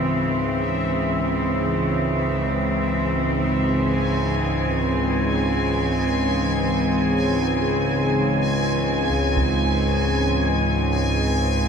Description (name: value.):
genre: dark ambient drone.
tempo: free time.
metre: none.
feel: none.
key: unclear.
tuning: A4 = 440 Hz.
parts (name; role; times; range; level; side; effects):
warm studio cello section; sustained chords; 0.0-11.7 s; C#3 to B#3; -23 LUFS; equal; none.
gamelan-type bossed gongs; arpeggios; 0.0-11.7 s; C#2 to G#4; -32 LUFS; left 1 dB; none.
analog drone; drone; 0.0-11.7 s; C#2 to G#2; -22 LUFS; equal; chorus.
bubbling stepped-filter texture; texture; 0.0-11.7 s; E5 to G#5; -28 LUFS; left 1 dB; chorus, built-in reverb.
taiko ensemble; percussion; 9.4-9.5 s; none; -28 LUFS; equal; none.
room: wet huge ambient reverb, RT60 8.0 s.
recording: none.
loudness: -19 LUFS.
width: side -6 dB against mid.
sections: 0.0-11.7 A section.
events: fade-in on synth drone 0.0-11.7; fade-in on synth texture 0.0-11.7.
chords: 0.0 C#m.